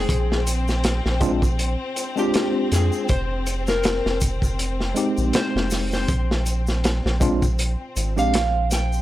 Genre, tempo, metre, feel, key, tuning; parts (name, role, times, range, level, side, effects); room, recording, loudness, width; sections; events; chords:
trip hop; 80 BPM; 4/4; swing 56% on 16ths; A4 = 440 Hz
electric slide guitar; melody; 0.0-9.0 s; G4 to G5; -27 LUFS; left 1 dB; tape echo
tine electric piano; accompaniment; 0.0-8.3 s; Ab3 to G4; -26 LUFS; equal; overdrive, medium stereo tremolo, harmonic tremolo, vintage 12-bit sampler grit, tape echo
rich symphonic string section; sustained chords; 0.0-9.0 s; C4; -31 LUFS; left 3 dB
soft dub sub bass; bass; 0.0-9.0 s; F1 to F2; -23 LUFS; equal
crunchy breakbeat drum kit; drums; 0.1-8.9 s; hi-hat, kick drum, snare drum; -24 LUFS; equal
egg shaker; percussion; 0.1-9.0 s; -36 LUFS; equal
little or no reverb; dry, gritty hardware recording; -19 LUFS; side -14 dB against mid
0.0-9.0 A section
0.1 Bb7; 3.1 Fm7; 6.1 Bb7